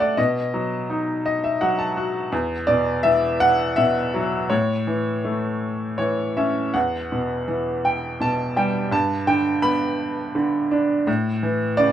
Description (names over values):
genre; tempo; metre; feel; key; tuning
classical, lyrical solo piano; 83 BPM; 3/4; rubato; unclear; A4 = 440 Hz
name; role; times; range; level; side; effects
bright upright piano; solo; 0.0-11.9 s; E2 to B5; -19 LUFS; equal; none
room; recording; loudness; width
light reverb; minimal, uncompressed stereo recording; -20 LUFS; side -10 dB against mid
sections
0.0-11.9 A section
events
upright piano fill 0.9-2.3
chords
0.2 B; 2.3 Esus2; 4.5 A; 6.7 Emadd9; 8.9 G; 11.1 A